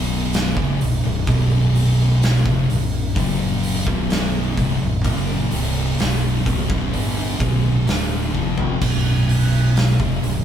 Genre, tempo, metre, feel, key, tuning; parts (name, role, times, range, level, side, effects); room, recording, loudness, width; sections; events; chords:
stoner and doom metal; 64 BPM; 4/4; straight; A4 = 440 Hz
thick fuzz guitar; riff; 0.0-10.4 s; B1 to G3; -23 LUFS; left 5 dB; distortion
thick fuzz guitar; riff; 0.0-10.4 s; B1 to G3; -20 LUFS; right 3 dB; distortion
growling fingered electric bass; bass; 0.0-10.4 s; B0 to G1; -27 LUFS; equal; overdrive
oversized low-tuned drum kit; drums; 0.3-10.4 s; crash cymbal, hi-hat, kick drum, snare drum, toms; -22 LUFS; equal
moderate large studio reverb, RT60 0.8 s; band playing live in one room; -17 LUFS; side -9 dB against mid
0.0-10.4 A section
drum fill 8.4-8.8
0.0 Bm